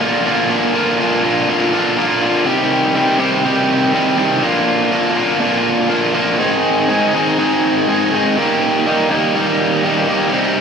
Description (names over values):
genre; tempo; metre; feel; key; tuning
rock; 122 BPM; 4/4; straight; C minor; A4 = 441 Hz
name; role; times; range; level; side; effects
raw garage guitar; solo; 0.0-10.6 s; Ab2 to Ab4; -13 LUFS; equal; overdrive
room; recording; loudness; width
moderate large studio reverb, RT60 1.3 s; band playing live in one room; -13 LUFS; side -6 dB against mid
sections
0.0-2.5 A section; 2.5-10.6 B section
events
none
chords
0.0 Bb; 2.5 Cm; 4.4 Bb; 6.4 Ab; 8.4 Eb